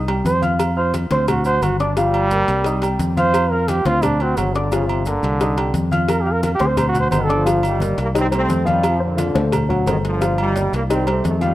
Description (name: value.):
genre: latin, salsa.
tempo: 175 BPM.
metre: 4/4.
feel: straight.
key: G minor.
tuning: A4 = 436 Hz.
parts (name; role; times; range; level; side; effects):
dark upright piano; accompaniment; 0.0-11.5 s; Eb3 to F#6; -22 LUFS; left 2 dB; none.
fingered electric bass; bass; 0.0-11.5 s; G1 to F2; -21 LUFS; equal; none.
agogo bells and timbales; percussion; 0.1-11.5 s; none; -29 LUFS; right 5 dB; none.
congas; percussion; 0.1-11.5 s; none; -27 LUFS; left 2 dB; none.
cowbell; percussion; 0.1-11.4 s; none; -28 LUFS; left 3 dB; none.
clear trombone; melody; 0.3-7.5 s; C3 to C5; -21 LUFS; right 2 dB; none.
maracas; percussion; 0.3-11.5 s; none; -41 LUFS; right 6 dB; none.
clear trombone section; melody; 7.1-11.5 s; Bb2 to C4; -23 LUFS; right 2 dB; none.
room: light reverb, small room ambience.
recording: rough home demo mix.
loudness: -16 LUFS.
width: side -15 dB against mid.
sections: 0.0-7.5 A section; 7.5-11.5 B section.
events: trombone solo 0.0-7.5.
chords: 0.0 C5; 0.6 F5; 1.3 D7; 2.0 Gm7; 2.7 Cm; 3.3 F5; 4.0 D7; 4.7 Gm7; 5.4 Cm; 6.1 F5; 6.8 D7; 7.5 Gm7; 8.2 Cm; 8.8 F5; 9.5 D7; 10.2 Gm7; 10.9 Cm.